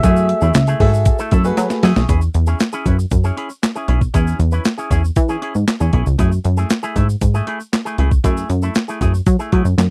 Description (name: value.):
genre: early-eighties boogie funk.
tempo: 117 BPM.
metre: 4/4.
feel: straight.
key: E major.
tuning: A4 = 440 Hz.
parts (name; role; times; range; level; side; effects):
expressive synth lead; melody; 0.0-1.5 s; E5; -24 LUFS; equal; chorus, slapback echo.
clear concert grand piano; accompaniment; 0.0-1.8 s; A3 to E5; -24 LUFS; equal; none.
electric guitar with an envelope filter; riff; 0.0-9.8 s; A3 to B4; -27 LUFS; equal; lush chorus.
plucky analog bass; bass; 0.0-9.9 s; B1 to F#3; -18 LUFS; equal; none.
clean 12-bit digital drum machine; drums; 0.0-9.9 s; handclaps, hi-hat, kick drum, snare drum; -20 LUFS; equal; none.
tube shaker; percussion; 0.0-9.9 s; none; -42 LUFS; equal; none.
room: little or no reverb.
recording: dry, close 1970s-style studio recording.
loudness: -17 LUFS.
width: mono.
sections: 0.0-2.1 A section; 2.1-9.9 B section.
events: drum fill 1.6-2.1.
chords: 0.0 F#m9; 2.1 E6; 6.2 F#m9.